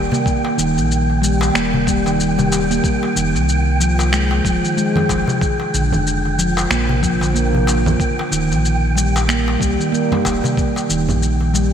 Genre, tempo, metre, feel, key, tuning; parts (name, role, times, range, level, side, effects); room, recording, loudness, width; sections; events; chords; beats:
organic downtempo; 93 BPM; 4/4; swing 59% on 16ths; A4 = 441 Hz
warm sub bass; bass; 0.0-11.7 s; Eb1 to C2; -20 LUFS; equal; tube saturation
wind-like tuned noise texture; texture; 0.0-11.7 s; G5; -24 LUFS; right 2 dB; built-in reverb, ensemble chorus
handpan; arpeggios; 0.1-11.7 s; D3 to Bb3; -18 LUFS; equal; ping-pong delay
electronic shaker, finger snaps and congas; drums; 0.1-11.7 s; -24 LUFS; equal; gated reverb
darbuka; percussion; 0.1-11.7 s; -26 LUFS; left 2 dB
electronic kick drum; drums; 0.3-10.7 s; -21 LUFS; equal
wet lush hall reverb, RT60 2.8 s; bright 1980s-style digital production; -15 LUFS; side -8 dB against mid
0.0-11.7 A section
0.0 Eb; 2.8 Fm7; 5.4 Bb5; 8.0 Eb
| 0.26 0.90 1.55 2.19 | 2.84 3.48 4.13 4.77 | 5.42 6.06 6.71 7.35 | 8.00 8.64 9.29 9.93 | 10.58 11.22